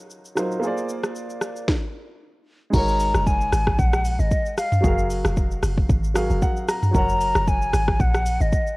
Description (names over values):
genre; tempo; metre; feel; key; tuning
amapiano; 114 BPM; 4/4; swing 55% on 16ths; unclear; A4 = 440 Hz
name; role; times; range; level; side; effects
warm grand piano; accompaniment; 0.0-8.8 s; Gb3 to Bb5; -28 LUFS; right 1 dB; none
afro-pop drum kit; drums; 0.1-8.8 s; crash cymbal, hi-hat, kick drum, rim click, shaker, snare drum, toms; -23 LUFS; equal; none
mellow hollow silver concert flute; melody; 2.7-8.8 s; Eb5 to Bb5; -24 LUFS; left 1 dB; ping-pong delay
deep log drum bass; bass; 2.7-8.5 s; F1 to Bb1; -22 LUFS; equal; none
room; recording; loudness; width
light reverb; worn, warbling old tape, cassette tape, warbly pitch drift; -19 LUFS; side -23 dB against mid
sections
0.0-2.7 A section; 2.7-8.8 B section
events
drop 2.7-8.8; grand piano fill 5.9-6.9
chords
0.0 Ebm7/Gb; 0.6 Bb7; 2.7 Ab7sus4; 4.8 Gbmaj7; 6.9 Gbadd9